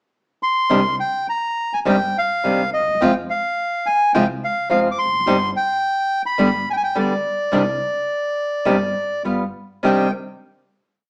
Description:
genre	tango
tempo	106 BPM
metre	4/4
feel	rubato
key	C minor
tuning	A4 = 439 Hz
part	bandoneon	melody	0.4-10.1 s	D5 to D6	-22 LUFS	equal	none
part	flamenco guitar	accompaniment	0.7-10.1 s	C3 to G4	-21 LUFS	equal	none
part	upright bass	bass	0.7-10.1 s	E1 to F2	-34 LUFS	equal	none
room	moderate studio reverb, RT60 0.8 s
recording	band playing live in one room, small speaker sound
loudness	-20 LUFS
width	mono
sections	0.0-0.7 pickup bar; 0.7-9.8 A section; 9.8-11.1 final chord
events	none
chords	0.0 N.C.; 0.7 Cmadd9; 3.0 Fm; 5.3 C5/G; 6.4 G; 7.5 Cmadd9; 9.3 G7; 9.8 Cmadd9

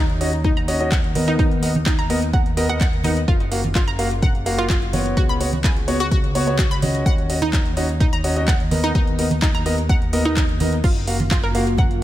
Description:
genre	progressive house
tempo	127 BPM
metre	4/4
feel	straight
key	F# major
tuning	A4 = 441 Hz
part	analog pluck	arpeggios	0.0-11.9 s	D#4 to B5	-26 LUFS	right 1 dB	chorus, sidechain pumping, dub echo
part	fat analog bass	bass	0.0-12.0 s	F#1 to D#2	-24 LUFS	equal	sidechain pumping
part	deep house drum kit	drums	0.1-12.0 s	crash cymbal, handclaps, hi-hat	-29 LUFS	equal	overdrive, sidechain pumping on hats, studio reverb, sidechain pumping on cymbals
part	warm concert grand piano	stabs	0.2-11.6 s	A#3 to E#5	-24 LUFS	left 1 dB	sidechain pumping, low-pass filter, dub echo
part	electronic kick drum	drums	0.4-11.9 s	none	-19 LUFS	equal	overdrive, studio reverb
part	congas	percussion	0.4-11.9 s	none	-27 LUFS	right 3 dB	none
part	evolving wavetable pad	sustained chords	11.2-12.0 s	C#3 to F#4	-26 LUFS	equal	chorus, built-in reverb, sidechain pumping
room	light reverb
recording	none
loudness	-17 LUFS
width	side -14 dB against mid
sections	0.0-12.0 A section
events	none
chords	0.0 D#m7; 1.4 Bmaj7/D#; 3.3 F#maj7; 5.2 C#7sus4; 7.1 D#m7; 8.9 Bmaj7/D#; 10.8 F#maj7

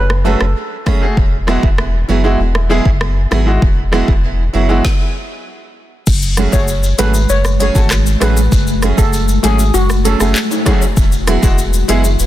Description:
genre	dancehall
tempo	98 BPM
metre	4/4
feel	straight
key	F# minor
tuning	A4 = 440 Hz
part	steel pan	melody	0.0-0.4, 6.5-10.2 s	F#4 to C#5	-20 LUFS	equal	digital delay
part	warm sub bass	bass	0.0-12.3 s	E1 to A1	-15 LUFS	equal	none
part	afro-pop drum kit	drums	0.1-12.3 s	crash cymbal, handclaps, hi-hat, kick drum, rim click, shaker, snare drum	-15 LUFS	equal	soft clipping on snare
part	clear concert grand piano	accompaniment	0.2-12.0 s	G#3 to B4	-21 LUFS	left 2 dB	sidechain pumping
part	fingerpicked steel-string acoustic guitar	arpeggios	0.2-12.1 s	F#3 to G#4	-20 LUFS	right 7 dB	digital delay
part	ethereal airy pad	sustained chords	6.9-12.3 s	E3 to B4	-22 LUFS	left 2 dB	ensemble chorus, built-in reverb, sidechain pumping
part	maracas and timbales	percussion	6.1-12.3 s	none	-27 LUFS	left 3 dB	none
room	small room ambience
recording	dense, heavily limited modern master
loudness	-11 LUFS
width	side -14 dB against mid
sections	0.0-6.1 A section; 6.1-12.3 B section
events	stop 4.8-6.1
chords	0.0 F#madd9; 1.2 Eadd9; 6.1 F#madd9; 11.0 Eadd9

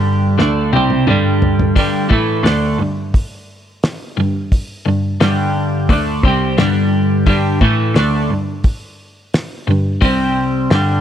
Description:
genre	psychedelic rock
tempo	87 BPM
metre	4/4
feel	straight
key	unclear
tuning	A4 = 440 Hz
part	twelve-string electric guitar	riff	0.0-11.0 s	G2 to D4	-15 LUFS	equal	phaser, double-tracked left and right
part	clear cello	bass	0.0-11.0 s	C2 to A2	-19 LUFS	equal	none
part	cloth-damped thuddy drum kit	drums	0.4-10.9 s	hi-hat, kick drum, snare drum, splash cymbal, toms	-16 LUFS	equal	none
room	light reverb, studio reverb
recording	none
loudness	-13 LUFS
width	side -10 dB against mid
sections	0.0-11.0 A section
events	drum fill 0.4-1.8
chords	0.0 G5; 10.0 C5

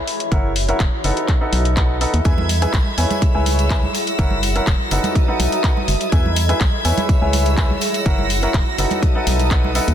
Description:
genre	piano house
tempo	124 BPM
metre	4/4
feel	straight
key	unclear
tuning	A4 = 443 Hz
part	granular cloud pad	texture	0.0-9.9 s	F#4 to B5	-25 LUFS	equal	built-in reverb, sidechain pumping
part	house drum kit	drums	0.1-9.9 s	handclaps, hi-hat	-26 LUFS	left 2 dB	none
part	bright concert grand piano	riff	0.3-9.9 s	D#4 to G#5	-23 LUFS	equal	sidechain pumping, low-pass filter, ping-pong delay
part	organ-like FM bass	bass	0.3-9.9 s	E1 to E2	-19 LUFS	equal	sidechain pumping
part	electronic kick drum	drums	0.3-9.6 s	none	-17 LUFS	equal	none
part	tambourine and congas	percussion	2.2-9.9 s	none	-28 LUFS	right 5 dB	none
part	clear studio violin section	sustained chords	2.3-9.9 s	B4 to A#6	-26 LUFS	equal	sidechain pumping
room	light reverb, small room ambience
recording	dense, heavily limited modern master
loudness	-15 LUFS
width	side -10 dB against mid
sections	0.0-9.9 A section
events	none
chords	0.1 F#7; 1.3 B7; 2.3 E; 3.2 C#m7; 3.9 F#7; 5.2 B7; 6.1 E; 7.1 C#m7; 7.8 F#7; 9.0 B7

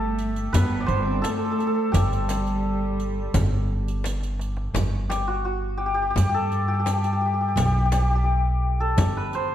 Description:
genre	Persian modal ensemble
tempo	85 BPM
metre	4/4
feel	straight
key	G dastgah mahur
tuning	A4 = 440 Hz
part	santur	melody	0.0-9.5 s	F#4 to D5	-26 LUFS	left 1 dB	none
part	dark studio cello section	second line	0.0-4.1 s	G3 to C4	-29 LUFS	equal	none
part	upright bass	bass	0.0-9.5 s	G1 to G2	-24 LUFS	equal	none
part	riq	percussion	0.2-9.4 s	none	-36 LUFS	right 4 dB	none
part	tombak	percussion	0.2-9.5 s	none	-28 LUFS	right 1 dB	none
part	frame drum	percussion	0.5-9.1 s	none	-31 LUFS	left 4 dB	none
room	moderate recital hall reverb, RT60 1.7 s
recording	none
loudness	-21 LUFS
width	side -11 dB against mid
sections	0.0-4.8 A section; 4.8-9.5 B section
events	drum fill 4.0-4.8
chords	none

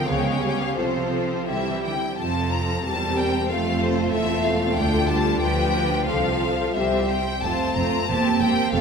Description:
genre	quick classical-period movement for string orchestra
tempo	82-95 BPM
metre	2/4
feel	rubato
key	F major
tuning	A4 = 440 Hz
part	bright symphonic violin section	melody	0.0-8.8 s	C5 to Bb5	-26 LUFS	left 4 dB	none
part	rich chamber violin section	second line	0.0-8.8 s	C4 to Db5	-27 LUFS	left 3 dB	none
part	rich studio viola section	accompaniment	0.0-8.8 s	F3 to F4	-25 LUFS	right 3 dB	none
part	rich chamber cello section	bass	0.0-8.8 s	C2 to E3	-30 LUFS	right 3 dB	none
part	rich chamber double bass section	bass	0.0-8.8 s	E1 to D2	-29 LUFS	right 2 dB	none
room	wet concert hall reverb, RT60 2.0 s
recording	minimal, uncompressed stereo recording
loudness	-20 LUFS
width	side -6 dB against mid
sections	0.0-2.2 A section; 2.2-8.8 B section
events	none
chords	0.1 Db5; 0.8 F/C; 1.5 C; 2.2 F; 2.9 C7/E; 3.5 F; 4.8 Dm; 5.4 G7/D; 6.1 F/C; 6.8 C; 7.4 F; 8.1 C7

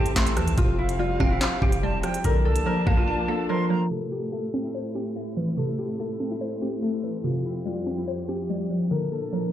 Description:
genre	hip hop, drill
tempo	144 BPM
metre	4/4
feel	half-time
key	A phrygian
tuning	A4 = 444 Hz
part	Celtic harp	melody	0.0-9.5 s	E4 to Bb4	-30 LUFS	left 2 dB	ping-pong delay
part	silver concert flute	second line	0.0-3.9 s	F5 to C6	-32 LUFS	right 3 dB	ping-pong delay
part	glassy wavetable pluck	accompaniment	0.0-9.5 s	C3 to C5	-28 LUFS	equal	chorus
part	muted studio string section	sustained chords	0.0-9.5 s	F2 to A5	-33 LUFS	equal	none
part	long sustained 808-style bass	bass	0.0-3.1 s	E1 to E2	-25 LUFS	equal	none
part	drill drum kit	drums	0.1-4.0 s	handclaps, hi-hat, kick drum, rim click, snare drum	-24 LUFS	equal	none
room	light reverb, studio reverb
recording	played on a big sound system in a bare room, large studio reverb, low-pass filter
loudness	-23 LUFS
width	side -11 dB against mid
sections	0.0-3.9 A section; 3.9-9.5 B section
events	break 3.1-3.9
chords	0.0 Am; 0.6 Fsus2; 2.2 Bbmaj7; 3.9 Am; 7.2 Fsus2; 8.9 Bbmaj7

